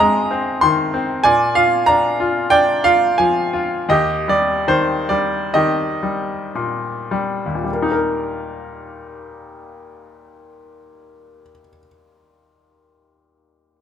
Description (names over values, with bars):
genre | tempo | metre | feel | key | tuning
classical, lyrical solo piano | 50-97 BPM | 4/4 | rubato | Eb major | A4 = 440 Hz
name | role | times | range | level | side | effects
bright upright piano | solo | 0.0-13.8 s | Eb2 to C6 | -16 LUFS | equal | none
room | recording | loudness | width
light reverb | close, detailed microphones | -15 LUFS | side -9 dB against mid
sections
0.0-7.7 A section; 7.7-12.2 B section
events
slowing down 1.2-7.7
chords
0.0 Ab; 1.2 Bb7; 3.9 Eb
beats
0.62 | 1.24 1.86 2.50 3.17 | 3.89 4.67 5.54 6.56 | 7.69 8.84 9.96 11.08